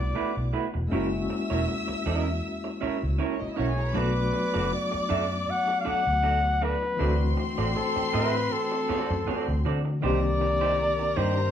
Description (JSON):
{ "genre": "soul", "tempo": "79 BPM", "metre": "4/4", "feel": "swing 54% on 16ths", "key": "unclear", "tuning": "A4 = 437 Hz", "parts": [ { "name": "warm flugelhorn", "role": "melody", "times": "0.0-11.5 s", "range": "A4 to F#5", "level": "-28 LUFS", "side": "left 2 dB", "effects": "none" }, { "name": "warm studio violin section", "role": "second line", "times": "0.0-11.5 s", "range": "C4 to E6", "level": "-33 LUFS", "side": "left 2 dB", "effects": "none" }, { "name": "tine electric piano", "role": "accompaniment", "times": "0.0-11.5 s", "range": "Eb3 to G4", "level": "-32 LUFS", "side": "left 4 dB", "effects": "fast tremolo" }, { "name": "vintage muted fingered electric bass", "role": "bass", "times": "0.0-11.5 s", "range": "E1 to D3", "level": "-28 LUFS", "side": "equal", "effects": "none" }, { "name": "electric guitar through a small old amp", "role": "riff", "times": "0.1-11.4 s", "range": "A3 to E5", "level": "-32 LUFS", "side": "right 7 dB", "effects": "none" } ], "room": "moderate large studio reverb, RT60 0.8 s", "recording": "band playing live in one room", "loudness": "-24 LUFS", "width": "side -9 dB against mid", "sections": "0.0-10.0 A section; 10.0-11.5 B section", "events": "none", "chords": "0.0 Gmaj13 (rootless); 0.9 F#7; 4.0 Bm7; 7.0 D7; 10.0 Cm7" }